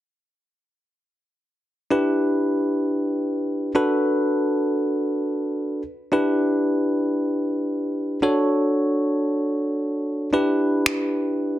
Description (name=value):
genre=dance-pop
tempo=free time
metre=none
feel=none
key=E dorian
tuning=A4 = 440 Hz
part: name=bell-like tine electric piano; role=accompaniment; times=1.9-11.6 s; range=D4 to C#5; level=-20 LUFS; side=equal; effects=none
part: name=electronic finger snaps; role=drums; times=10.9-11.0 s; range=none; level=-22 LUFS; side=equal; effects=soft clipping on snare
room=moderate digital room reverb, RT60 1.2 s, digital ambience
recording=dense, heavily limited modern master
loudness=-20 LUFS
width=side -14 dB against mid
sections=1.9-11.6 A section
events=none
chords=1.9 Em7; 3.8 Bm7; 6.1 Em7; 8.2 Dmaj7; 10.3 Em7